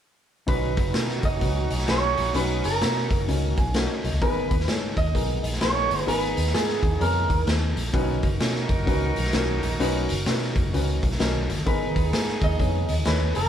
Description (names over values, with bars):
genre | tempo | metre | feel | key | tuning
uptempo 1960s-style soul | 129 BPM | 4/4 | swing 63% on 8ths | unclear | A4 = 444 Hz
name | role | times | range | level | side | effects
electric guitar through a small old amp | melody | 0.5-7.4, 11.7-13.5 s | G#4 to D#5 | -27 LUFS | right 3 dB | none
clear saxophone section | second line | 0.5-13.3 s | B3 to A#4 | -33 LUFS | right 3 dB | none
dark upright piano | accompaniment | 0.5-13.4 s | B3 to G#5 | -29 LUFS | left 3 dB | none
vintage muted fingered electric bass | bass | 0.5-13.5 s | E#1 to B2 | -26 LUFS | equal | none
raw garage drum kit | drums | 0.5-13.4 s | hi-hat, kick drum, snare drum | -26 LUFS | equal | none
congas | percussion | 7.9-13.5 s | none | -37 LUFS | equal | none
room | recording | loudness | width
moderate studio reverb, RT60 0.6 s | band playing live in one room, cassette tape | -21 LUFS | side -9 dB against mid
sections
0.5-13.5 A section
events
upright piano fill 3.3-4.2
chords
0.5 Badd9; 4.2 G#madd9; 7.9 Badd9; 11.7 G#madd9